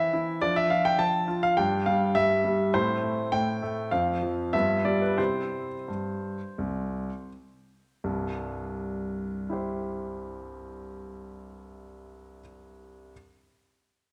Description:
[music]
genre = classical-period piano sonatina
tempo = 80-106 BPM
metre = 4/4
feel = rubato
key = C major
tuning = A4 = 440 Hz
[part]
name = clear grand piano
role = solo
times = 0.0-13.1 s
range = C2 to A5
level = -28 LUFS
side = equal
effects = none
[sound]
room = wet recital hall reverb, RT60 1.4 s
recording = none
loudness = -28 LUFS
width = mono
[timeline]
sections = 0.0-8.0 A section; 8.0-10.9 B section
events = slowing down 1.6-8.0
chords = 0.4 Dm/F; 1.6 G5; 2.7 Am; 3.9 F5; 4.5 G7; 5.2 C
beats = | 0.42 0.99 1.57 2.15 | 2.74 3.33 3.92 4.54 | 5.19 5.88 6.58 7.29 | 8.03 8.76 9.49 10.22

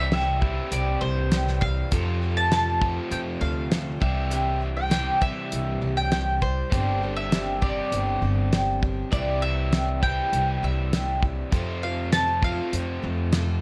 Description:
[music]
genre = folk rock and heartland rock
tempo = 100 BPM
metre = 4/4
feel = straight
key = C major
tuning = A4 = 439 Hz
[part]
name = mandolin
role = melody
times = 0.0-13.0 s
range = C5 to A5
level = -31 LUFS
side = equal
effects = none
[part]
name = picked twelve-string acoustic guitar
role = accompaniment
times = 0.0-13.6 s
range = G2 to A4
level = -34 LUFS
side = equal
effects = none
[part]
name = crunchy overdriven guitar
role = riff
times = 0.0-13.6 s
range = F2 to G4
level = -34 LUFS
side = equal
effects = none
[part]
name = upright bass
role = bass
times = 0.0-13.6 s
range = G1 to F2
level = -29 LUFS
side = equal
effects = none
[part]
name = damped 70s drum kit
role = drums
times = 0.1-13.5 s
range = hi-hat, kick drum, snare drum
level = -27 LUFS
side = equal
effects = none
[sound]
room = little or no reverb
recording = worn, warbling old tape, cassette tape, warbly pitch drift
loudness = -25 LUFS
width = mono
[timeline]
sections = 0.0-13.6 A section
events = none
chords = 0.0 Cadd9; 1.9 F; 4.0 Cadd9; 6.7 Gsus4; 9.1 Cadd9; 11.5 F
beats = 0.12 0.72 1.32 | 1.92 2.52 3.12 3.72 | 4.32 4.92 5.52 6.12 | 6.72 7.32 7.92 8.52 | 9.12 9.72 10.32 10.92 | 11.52 12.12 12.72 13.32

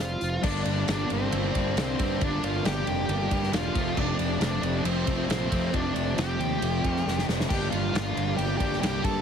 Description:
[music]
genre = quiet-loud alternative rock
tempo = 136 BPM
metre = 4/4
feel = straight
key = G minor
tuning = A4 = 440 Hz
[part]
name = octave-fuzz lead guitar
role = melody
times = 0.0-9.2 s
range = C4 to A4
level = -31 LUFS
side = left 1 dB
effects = distortion, slapback echo
[part]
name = fuzz fingered electric bass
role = bass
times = 0.0-9.2 s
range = E1 to G2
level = -31 LUFS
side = equal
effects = overdrive
[part]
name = loose indie drum kit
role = drums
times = 0.2-9.1 s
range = crash cymbal, hi-hat, kick drum, ride cymbal, snare drum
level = -31 LUFS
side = equal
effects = none
[part]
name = string machine, full ensemble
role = sustained chords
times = 0.4-9.2 s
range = F4 to Bb5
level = -41 LUFS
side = left 1 dB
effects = none
[part]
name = fuzz guitar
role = riff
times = 0.4-9.2 s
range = F2 to D4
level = -32 LUFS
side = left 16 dB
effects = distortion
[part]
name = overdriven semi-hollow guitar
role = riff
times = 0.4-9.2 s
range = F2 to D4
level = -31 LUFS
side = right 12 dB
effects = none
[sound]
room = little or no reverb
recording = heavily compressed radio sound, multiband compression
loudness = -24 LUFS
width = side -7 dB against mid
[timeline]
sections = 0.4-9.2 A section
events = drum fill 7.1-7.5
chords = 0.4 Gm; 3.7 F6; 7.5 Gm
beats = | 0.43 0.87 1.32 1.76 | 2.20 2.64 3.08 3.53 | 3.97 4.41 4.85 5.29 | 5.73 6.17 6.62 7.05 | 7.50 7.93 8.37 8.81

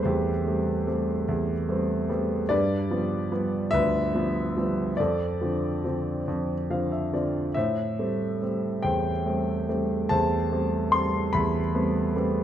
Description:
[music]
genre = classical, lyrical solo piano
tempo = 48 BPM (dotted quarters)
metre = 6/8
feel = rubato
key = A minor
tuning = A4 = 440 Hz
[part]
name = warm concert grand piano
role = solo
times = 0.0-12.4 s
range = D2 to C6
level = -24 LUFS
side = equal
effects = none
[sound]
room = moderate recital hall reverb, RT60 1.4 s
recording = dark, warm production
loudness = -24 LUFS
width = side -10 dB against mid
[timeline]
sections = 0.0-12.4 A section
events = grand piano fill 6.3-7.6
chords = 0.0 Am9; 2.5 G7; 5.0 Dm7/F; 7.6 Am9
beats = | 0.06 1.29 | 2.51 3.74 | 4.99 6.27 | 7.56 8.84 | 10.11 11.35

